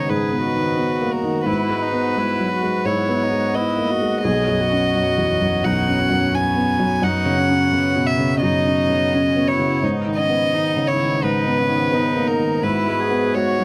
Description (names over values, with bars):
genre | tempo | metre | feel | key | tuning
neoclassical piano and strings | 86 BPM | 4/4 | rubato | unclear | A4 = 440 Hz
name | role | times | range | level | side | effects
rich violin | melody | 0.0-13.6 s | A#4 to G#5 | -24 LUFS | equal | none
warm cello | second line | 0.0-13.6 s | B3 to G#4 | -28 LUFS | equal | none
felt-muted upright piano | accompaniment | 0.0-13.6 s | B1 to C#4 | -23 LUFS | equal | none
hand-pumped harmonium | sustained chords | 0.0-13.6 s | B3 to F#5 | -33 LUFS | equal | none
room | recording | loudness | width
light reverb | none | -19 LUFS | mono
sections
0.0-13.6 A section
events
none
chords
0.0 G#madd9; 1.5 G#m11; 4.2 Badd9; 7.0 F#sus4; 9.8 G#madd9; 12.6 Eadd9/G#